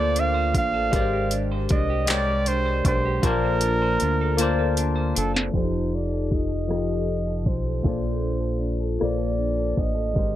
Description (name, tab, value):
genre	slow six-eight R&B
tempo	52 BPM (dotted quarters)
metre	6/8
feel	straight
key	Bb major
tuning	A4 = 437 Hz
part	mellow flugelhorn	melody	0.0-10.4 s	A4 to F5	-27 LUFS	right 3 dB	none
part	semi-hollow electric guitar	second line	0.0-10.4 s	F3 to C5	-33 LUFS	right 6 dB	none
part	barky tine electric piano	accompaniment	0.0-10.4 s	F3 to A5	-27 LUFS	left 5 dB	phaser
part	deep dub fingered electric bass	bass	0.0-10.4 s	F1 to D2	-26 LUFS	equal	none
part	smooth R&B drum kit	drums	0.2-10.3 s	handclaps, hi-hat, kick drum, rim click, snare drum	-25 LUFS	equal	overdrive
room	light reverb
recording	low-pass filter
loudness	-21 LUFS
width	side -12 dB against mid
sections	0.0-5.5 A section; 5.5-10.4 B section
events	drum fill 3.2-5.5; filter sweep 5.5-10.4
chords	0.0 Bbmaj9; 0.9 Abmaj9#11; 3.2 Bbmaj9; 5.5 F7; 7.9 Bbmaj9